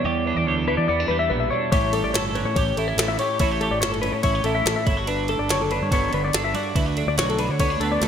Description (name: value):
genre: math rock and midwest emo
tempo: 143 BPM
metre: 4/4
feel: straight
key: unclear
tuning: A4 = 440 Hz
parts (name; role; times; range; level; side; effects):
- twelve-string electric guitar; accompaniment; 0.0-8.1 s; D2 to A4; -25 LUFS; right 6 dB; lush chorus
- clean electric guitar; arpeggios; 0.0-8.1 s; A4 to E5; -24 LUFS; left 5 dB; wide subtle chorus, ping-pong delay
- fuzz fingered electric bass; bass; 0.0-8.1 s; F#1 to E3; -27 LUFS; equal; overdrive
- glitchy drum kit; drums; 1.7-8.1 s; kick drum, ride cymbal, snare drum; -25 LUFS; equal; none
room: moderate plate reverb, RT60 2.0 s, digital ambience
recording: bright 1980s-style digital production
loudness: -20 LUFS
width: side -8 dB against mid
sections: 0.0-8.1 A section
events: none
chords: 0.0 Em7; 1.7 A7; 4.9 Gmaj9; 6.8 D6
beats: | 0.04 0.46 0.88 1.30 | 1.72 2.14 2.56 2.98 | 3.40 3.81 4.24 4.65 | 5.07 5.49 5.91 6.33 | 6.75 7.17 7.59 8.01